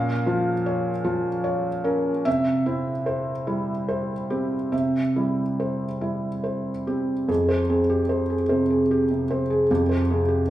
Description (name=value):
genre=neoclassical minimalist piano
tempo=46-52 BPM (dotted quarters)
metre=6/8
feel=rubato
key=F minor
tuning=A4 = 444 Hz
part: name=felt-muted upright piano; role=solo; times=0.0-10.5 s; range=F2 to F5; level=-21 LUFS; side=equal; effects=none
room=wet large studio reverb, RT60 1.0 s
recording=band playing live in one room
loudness=-21 LUFS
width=side -13 dB against mid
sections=0.0-7.3 A section; 7.3-10.5 B section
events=none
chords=0.0 Bbm; 2.3 C; 7.3 Fmadd9